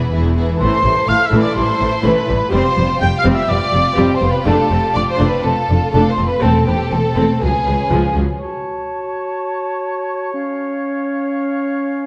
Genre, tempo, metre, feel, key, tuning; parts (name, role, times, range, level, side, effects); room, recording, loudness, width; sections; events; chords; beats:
cinematic; 124 BPM; 4/4; straight; A minor, F# harmonic minor from 8.4 s; A4 = 441 Hz
warm symphonic violin section; melody; 0.0-8.2 s; G4 to G5; -23 LUFS; equal
silver concert flute; second line; 0.0-12.1 s; E#5 to G6; -23 LUFS; equal
warm symphonic violin section; second line; 0.0-8.2 s; C4 to B4; -28 LUFS; equal
rich symphonic viola section; accompaniment; 0.0-8.2 s; E3 to D4; -22 LUFS; equal
rich symphonic cello section; bass; 0.0-8.2 s; C#2 to A2; -23 LUFS; equal
warm symphonic double bass section; bass; 0.0-8.2 s; E1 to C#2; -23 LUFS; equal
timpani; percussion; 0.0-0.3, 6.4-7.1 s; E2; -27 LUFS; equal
mellow clarinet; second line; 8.4-12.1 s; C#4 to F#4; -25 LUFS; equal
mellow oboe; second line; 8.4-12.1 s; C#5; -27 LUFS; equal
moderate scoring stage reverb, RT60 1.6 s; dark, warm production; -16 LUFS; mono
0.0-8.4 A section; 8.4-12.1 B section
0.0 E; 0.6 Am; 2.5 Fsus2; 4.5 Dm/F; 6.4 Am/E; 7.4 C#7; 8.4 F#m; 10.3 C#
0.12 | 0.60 1.09 1.57 2.06 | 2.54 3.02 3.51 3.99 | 4.47 4.96 5.45 5.94 | 6.43 6.92 7.42 7.92 | 8.41 8.89 9.38 9.87 | 10.35 10.82 11.31 11.79